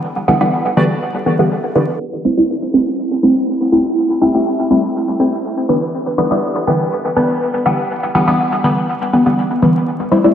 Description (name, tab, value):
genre	dub techno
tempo	122 BPM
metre	4/4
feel	straight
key	A minor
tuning	A4 = 440 Hz
part	filtered dub chord stab	stabs	0.0-10.3 s	D3 to E4	-13 LUFS	equal	phaser, dub echo
part	warbly lo-fi synth keys	riff	0.8 s	F#4 to D5	-24 LUFS	right 2 dB	chorus, dub echo
room	wet lush hall reverb, RT60 2.7 s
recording	dreamy mix soaked in reverb, vinyl crackle, low-pass filter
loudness	-13 LUFS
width	side -9 dB against mid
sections	0.0-2.0 A section; 2.0-9.9 B section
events	filter sweep 2.0-9.9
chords	0.0 Em7; 2.0 Am7; 5.9 Em7